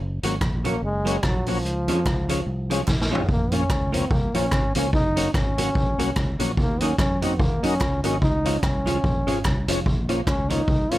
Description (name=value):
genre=ska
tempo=146 BPM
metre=4/4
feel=swing 58% on 8ths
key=unclear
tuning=A4 = 438 Hz
part: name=fingered electric bass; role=bass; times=0.0-11.0 s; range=F1 to Gb2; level=-27 LUFS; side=equal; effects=none
part: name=vintage hollow-body jazz guitar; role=accompaniment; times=0.2-11.0 s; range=F3 to Gb4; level=-28 LUFS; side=right 4 dB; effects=none
part: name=tonewheel organ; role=stabs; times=0.2-11.0 s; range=Db4 to Eb5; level=-29 LUFS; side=left 5 dB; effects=chorus vibrato, slow rotary speaker, dub echo
part: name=street-band drum kit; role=drums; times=0.2-11.0 s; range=hi-hat, kick drum, rim click, snare drum, toms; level=-24 LUFS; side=equal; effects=none
part: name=group handclap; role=percussion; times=0.4-10.4 s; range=none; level=-38 LUFS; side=right 3 dB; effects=none
part: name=breathy trombone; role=melody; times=0.7-11.0 s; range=F3 to F4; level=-26 LUFS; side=equal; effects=none
room=light reverb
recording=none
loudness=-20 LUFS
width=side -16 dB against mid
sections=0.0-3.3 A section; 3.3-11.0 B section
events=drum fill 2.9-3.3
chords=0.0 Gb; 1.6 Db; 3.3 Bbm; 4.9 Gb; 6.6 Ebm; 8.2 Db; 9.9 Bbm